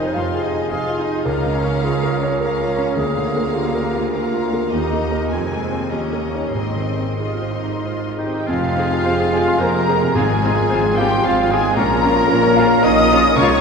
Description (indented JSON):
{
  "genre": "classical, romantic movement for piano and orchestra",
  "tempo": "91-115 BPM",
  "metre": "3/4",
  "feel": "rubato",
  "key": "Ab major, F minor from 8.5 s",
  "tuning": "A4 = 443 Hz",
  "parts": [
    { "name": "clear concert grand piano", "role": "melody", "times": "0.0-13.6 s", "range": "Db2 to C6", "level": "-21 LUFS", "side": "equal", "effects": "none" },
    { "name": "warm studio violin section", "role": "melody", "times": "0.0-13.6 s", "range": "Eb5 to Eb6", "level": "-26 LUFS", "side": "left 4 dB", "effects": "none" },
    { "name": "dark clarinet", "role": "second line", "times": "0.0-13.6 s", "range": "Eb4 to F5", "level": "-26 LUFS", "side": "equal", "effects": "none" },
    { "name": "rich studio violin section", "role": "second line", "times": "0.0-13.6 s", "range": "Eb4 to Ab5", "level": "-28 LUFS", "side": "left 2 dB", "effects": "none" },
    { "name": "rich chamber viola section", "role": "accompaniment", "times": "0.0-13.5 s", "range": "Bb3 to Ab4", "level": "-26 LUFS", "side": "right 1 dB", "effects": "none" },
    { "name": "clear chamber cello section", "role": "bass", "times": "0.0-13.6 s", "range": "Db2 to Bb2", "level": "-28 LUFS", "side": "right 2 dB", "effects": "none" },
    { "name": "clear chamber double bass section", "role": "bass", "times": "0.0-13.6 s", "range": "F1 to Eb2", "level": "-28 LUFS", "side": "right 3 dB", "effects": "none" },
    { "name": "large flute ensemble", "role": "second line", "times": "8.2-13.6 s", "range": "Eb5 to Eb6", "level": "-24 LUFS", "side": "left 2 dB", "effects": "none" },
    { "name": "warm oboe", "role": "second line", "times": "8.2-13.6 s", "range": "Eb4 to Eb5", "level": "-26 LUFS", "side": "equal", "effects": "none" },
    { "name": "mellow French horn section", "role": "sustained chords", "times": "8.2-13.6 s", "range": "Eb3 to Eb4", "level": "-24 LUFS", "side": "left 4 dB", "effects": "none" },
    { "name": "mellow trumpet section", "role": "stabs", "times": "8.2-13.6 s", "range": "Eb4 to Eb5", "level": "-23 LUFS", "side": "right 1 dB", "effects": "none" },
    { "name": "warm trombone section", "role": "sustained chords", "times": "8.5-13.6 s", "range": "F3 to Db4", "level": "-27 LUFS", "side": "right 2 dB", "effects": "none" },
    { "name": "mellow tuba", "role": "bass", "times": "8.5-13.6 s", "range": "F1 to Db2", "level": "-27 LUFS", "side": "right 2 dB", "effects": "none" },
    { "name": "timpani", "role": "percussion", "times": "10.2-10.9 s", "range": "Ab2", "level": "-30 LUFS", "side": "left 3 dB", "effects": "none" }
  ],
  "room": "wet cathedral reverb, RT60 4.7 s",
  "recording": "minimal, uncompressed stereo recording",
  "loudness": "-16 LUFS",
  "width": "side -5 dB against mid",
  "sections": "0.0-8.5 A section; 8.5-13.6 B section",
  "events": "none",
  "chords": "0.0 Fm7; 1.3 Bbm/Db; 3.0 Bb7/D; 4.7 Eb; 5.3 Fm; 5.9 Eb7; 6.5 Ab; 8.5 Fm; 10.2 Fm/Ab; 11.8 Bbm",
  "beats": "0.15 0.70 | 1.26 1.84 2.41 | 2.98 3.56 4.14 | 4.72 5.31 5.92 | 6.55 7.20 7.85 | 8.48 9.05 9.61 | 10.16 10.72 11.26 | 11.78 12.31 12.85 | 13.38"
}